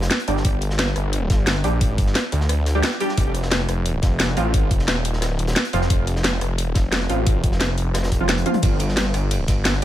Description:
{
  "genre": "dark technical drum and bass",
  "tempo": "176 BPM",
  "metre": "4/4",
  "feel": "straight",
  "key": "unclear",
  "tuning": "A4 = 440 Hz",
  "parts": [
    { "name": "snarling distorted saw bass", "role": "bass", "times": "0.0-9.8 s", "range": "Eb1 to D2", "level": "-22 LUFS", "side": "equal", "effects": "distortion, overdrive, sidechain pumping" },
    { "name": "crunchy breakbeat drum kit", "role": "drums", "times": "0.0-9.8 s", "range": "hi-hat, snare drum", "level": "-33 LUFS", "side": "equal", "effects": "high-pass filter on hats, high-pass filter on snare, high-pass filter on room" },
    { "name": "drum and bass drum kit", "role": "drums", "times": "0.1-9.8 s", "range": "hi-hat, ride cymbal, rim click, snare drum, toms", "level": "-23 LUFS", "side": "equal", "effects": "none" },
    { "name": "orchestra-hit-like synth stab", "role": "stabs", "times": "0.3-9.8 s", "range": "F3 to G4", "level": "-27 LUFS", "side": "right 2 dB", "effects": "built-in reverb, diffuse ambient delay" },
    { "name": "electronic kick drum", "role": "drums", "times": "0.4-9.6 s", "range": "none", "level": "-20 LUFS", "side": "equal", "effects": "none" }
  ],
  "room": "digital ambience",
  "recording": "none",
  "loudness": "-18 LUFS",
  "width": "side -12 dB against mid",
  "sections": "0.0-9.8 A section",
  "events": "drum fill 8.5",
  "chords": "0.0 G5; 3.2 F5; 8.6 N.C.",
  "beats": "0.11 | 0.45 0.79 1.13 1.47 | 1.81 2.15 2.49 2.83 | 3.17 3.52 3.86 4.20 | 4.54 4.88 5.22 5.56 | 5.90 6.24 6.58 6.92 | 7.27 7.61 7.95 8.29 | 8.63 8.97 9.31 9.65"
}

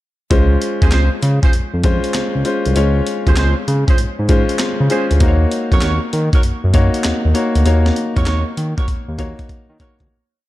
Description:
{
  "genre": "R&B, new jack swing",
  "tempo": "98 BPM",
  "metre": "4/4",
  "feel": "swing 67% on 16ths",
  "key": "Db major",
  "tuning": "A4 = 441 Hz",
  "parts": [
    { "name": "clear concert grand piano", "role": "accompaniment", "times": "0.3-10.1 s", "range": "Ab3 to Db5", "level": "-20 LUFS", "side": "left 2 dB", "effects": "none" },
    { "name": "smooth synth bass", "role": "bass", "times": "0.3-10.1 s", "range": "C2 to Eb3", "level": "-15 LUFS", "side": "equal", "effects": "none" },
    { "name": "breakbeat sampler-style drum kit", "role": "drums", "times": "0.3-10.1 s", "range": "handclaps, hi-hat, kick drum, snare drum", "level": "-17 LUFS", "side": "equal", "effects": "none" },
    { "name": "mellow horn section", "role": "stabs", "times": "0.8-10.0 s", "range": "Db4 to Db5", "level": "-25 LUFS", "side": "right 4 dB", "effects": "tape echo" }
  ],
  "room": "digital ambience",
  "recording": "dark, warm production",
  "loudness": "-13 LUFS",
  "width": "side -16 dB against mid",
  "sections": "0.3-10.1 verse",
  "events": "fade-out 7.7-10.1; drum fill 8.9-10.1",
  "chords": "0.3 Dbmaj7; 5.2 Ebm7",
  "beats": "| 0.31 0.92 1.53 2.15 | 2.76 3.37 3.98 4.59 | 5.21 5.82 6.43 7.04 | 7.66 8.27 8.88 9.49"
}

